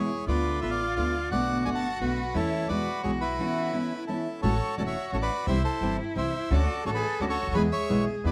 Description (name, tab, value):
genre	tango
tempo	173 BPM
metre	3/4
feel	rubato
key	A major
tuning	A4 = 440 Hz
part	bandoneon	melody	0.0-8.3 s	E4 to A5	-33 LUFS	equal	plate reverb
part	rich cello	second line	0.0-8.3 s	E4 to A4	-36 LUFS	equal	none
part	nylon-string guitar	accompaniment	0.0-8.3 s	B2 to F#4	-32 LUFS	equal	none
part	bandoneon	stabs	0.0-8.3 s	G#3 to A4	-44 LUFS	equal	none
part	upright bass	bass	0.0-8.3 s	E1 to E2	-33 LUFS	equal	none
room	moderate studio reverb, RT60 0.9 s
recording	vinyl crackle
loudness	-28 LUFS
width	mono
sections	0.0-4.4 A section; 4.4-8.3 B section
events	none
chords	0.3 Dm6; 1.3 Bm7; 2.4 A/E; 2.7 Eadd9; 3.4 Aadd9; 4.4 A6; 5.5 C; 6.5 Dmaj7; 7.6 E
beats	| 0.27 0.62 0.96 | 1.31 1.66 2.01 | 2.35 2.70 3.05 | 3.39 3.74 4.09 | 4.44 4.79 5.13 | 5.48 5.83 6.17 | 6.51 6.86 7.21 | 7.55 7.90 8.24